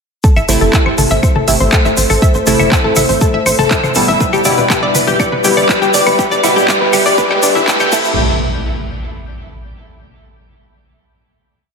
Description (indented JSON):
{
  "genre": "melodic techno",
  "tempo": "121 BPM",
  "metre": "4/4",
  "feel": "straight",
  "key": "A minor",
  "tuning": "A4 = 440 Hz",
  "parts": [
    { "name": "dark analog pad", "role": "sustained chords", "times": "1.1-8.2 s", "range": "G3 to E5", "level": "-19 LUFS", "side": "equal", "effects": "chorus, phaser, vintage 12-bit sampler grit, sidechain pumping" },
    { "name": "analog pluck", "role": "arpeggios", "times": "0.2-8.2 s", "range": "D4 to E5", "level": "-15 LUFS", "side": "left 1 dB", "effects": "chorus, sidechain pumping, diffuse ambient delay" },
    { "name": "electronic kick drum", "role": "drums", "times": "0.2-8.0 s", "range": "none", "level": "-13 LUFS", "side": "equal", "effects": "overdrive" },
    { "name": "tube shaker", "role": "percussion", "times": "0.2-8.1 s", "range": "none", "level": "-22 LUFS", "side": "left 4 dB", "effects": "none" },
    { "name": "riser and impact", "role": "sound effects", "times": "3.4-9.9 s", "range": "none", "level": "-23 LUFS", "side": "equal", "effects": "none" },
    { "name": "tight sequencer bass", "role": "bass", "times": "0.4-8.2 s", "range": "E1 to A1", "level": "-20 LUFS", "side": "equal", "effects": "sidechain pumping" },
    { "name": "techno drum kit", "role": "drums", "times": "0.4-8.0 s", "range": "claves, crash cymbal, handclaps, hi-hat, toms", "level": "-17 LUFS", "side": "equal", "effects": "none" },
    { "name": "synth brass stab", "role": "stabs", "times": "0.5-8.1 s", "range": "B2 to E4", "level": "-18 LUFS", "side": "right 1 dB", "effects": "chorus, phaser, sidechain pumping, diffuse ambient delay" }
  ],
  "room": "wet lush hall reverb, RT60 1.5 s, digital ambience",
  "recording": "dreamy mix soaked in reverb, high-pass filter",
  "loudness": "-10 LUFS",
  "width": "side -5 dB against mid",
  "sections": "0.2-8.2 build; 8.2-10.2 final hit",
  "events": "build-up 0.2-8.2; filter sweep 0.2-8.2",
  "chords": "0.2 Am; 4.2 G6; 7.9 Am; 8.2 N.C.",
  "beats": "| 0.24 0.73 1.23 1.73 | 2.22 2.72 3.21 3.71 | 4.21 4.70 5.20 5.69 | 6.19 6.68 7.18 7.68 | 8.17 8.67 9.16 9.66"
}